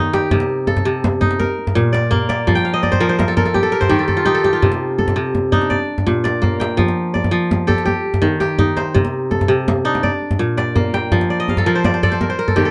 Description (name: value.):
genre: west african traditional, West African string and xylophone music.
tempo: 111 BPM (dotted quarters).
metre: 12/8.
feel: straight.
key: C dorian.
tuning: A4 = 440 Hz.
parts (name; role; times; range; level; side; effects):
kora; arpeggios; 0.0-12.7 s; Bb2 to G5; -19 LUFS; equal; none.
djembe; percussion; 0.1-12.7 s; none; -21 LUFS; equal; none.
room: light reverb.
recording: nothing above 10.8 kHz.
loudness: -17 LUFS.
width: mono.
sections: 0.0-4.6 A section; 4.6-12.7 B section.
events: kora fill 2.6-4.6, 11.3-12.7; drum fill 3.9-4.6.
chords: 0.3 Cm; 1.4 Bb; 2.5 F; 3.5 N.C.; 4.6 Cm; 5.7 Bb; 6.8 F; 7.9 Eb; 8.9 Cm; 10.0 Bb; 11.1 F; 12.2 N.C..